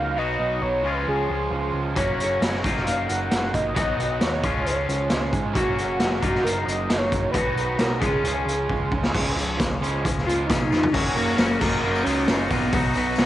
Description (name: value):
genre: indie rock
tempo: 134 BPM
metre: 4/4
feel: straight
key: unclear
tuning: A4 = 439 Hz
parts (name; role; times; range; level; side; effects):
- octave-doubled lead; melody; 0.0-13.3 s; A#3 to F#5; -26 LUFS; equal; chorus, analog delay
- overdriven electric guitar; riff; 0.0-13.3 s; B2 to F#4; -29 LUFS; right 7 dB; wide subtle chorus, cassette tape, analog delay
- twangy electric guitar; riff; 0.0-13.3 s; F#2 to F#4; -29 LUFS; left 7 dB; cassette tape
- growling picked electric bass; bass; 0.0-13.3 s; F#1 to B2; -29 LUFS; equal; overdrive
- raw garage drum kit; drums; 2.0-13.3 s; crash cymbal, hi-hat, kick drum, snare drum, toms; -25 LUFS; equal; cassette tape
- mellow tonewheel organ; sustained chords; 9.1-13.3 s; F#4 to D#6; -36 LUFS; equal; none
- tambourine; percussion; 9.4-13.3 s; none; -45 LUFS; left 8 dB; none
room: light reverb, small room ambience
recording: home recording on cassette, nothing above 10.6 kHz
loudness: -20 LUFS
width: side -13 dB against mid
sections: 0.0-9.1 A section; 9.1-10.9 B section; 10.9-13.3 C section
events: drum fill 8.7-9.1, 10.7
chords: 0.2 B; 0.9 C#; 2.0 F#; 2.6 D#madd9/F#; 3.8 B; 4.4 C#; 5.5 F#; 6.2 D#madd9/F#; 7.3 B; 8.0 C#; 10.9 F#; 11.6 D#madd9/F#; 12.7 B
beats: | 0.18 0.63 1.08 1.52 | 1.97 2.42 2.86 3.31 | 3.76 4.21 4.65 5.10 | 5.55 6.00 6.45 6.89 | 7.34 7.79 8.24 8.69 | 9.14 9.59 10.04 10.49 | 10.94 11.39 11.84 12.29 | 12.73 13.18